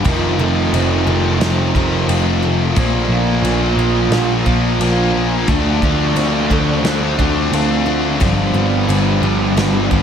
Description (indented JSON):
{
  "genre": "rock, shoegaze and dream pop",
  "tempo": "88 BPM",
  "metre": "4/4",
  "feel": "straight",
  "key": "D minor",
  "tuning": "A4 = 444 Hz",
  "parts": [
    { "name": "picked twelve-string acoustic guitar", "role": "arpeggios", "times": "0.0-10.0 s", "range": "Eb3 to F4", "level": "-24 LUFS", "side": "right 3 dB", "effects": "wide subtle chorus, tape echo" },
    { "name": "overdriven electric guitar", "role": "riff", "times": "0.0-10.0 s", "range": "F2 to Eb4", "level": "-21 LUFS", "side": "right 8 dB", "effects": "reverse reverb" },
    { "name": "thick fuzz guitar", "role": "riff", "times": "0.0-10.0 s", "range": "F2 to D4", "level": "-19 LUFS", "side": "left 7 dB", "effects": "distortion, ensemble chorus" },
    { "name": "tight distorted guitar", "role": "riff", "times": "0.0-10.0 s", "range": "F2 to D4", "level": "-22 LUFS", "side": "right 1 dB", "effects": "distortion" },
    { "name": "vintage muted picked electric bass", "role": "bass", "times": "0.1-10.0 s", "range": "F1 to D2", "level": "-19 LUFS", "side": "right 1 dB", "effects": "none" },
    { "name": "loose indie drum kit", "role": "drums", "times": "0.1-10.0 s", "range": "crash cymbal, kick drum, snare drum", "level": "-22 LUFS", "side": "equal", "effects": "none" }
  ],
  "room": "moderate huge ambient reverb, RT60 7.2 s",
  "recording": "dreamy mix soaked in reverb",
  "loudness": "-13 LUFS",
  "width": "side -8 dB against mid",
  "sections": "0.0-10.0 A section",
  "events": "none",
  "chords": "0.1 F7; 2.8 Bb; 5.5 Dm7; 8.2 G7"
}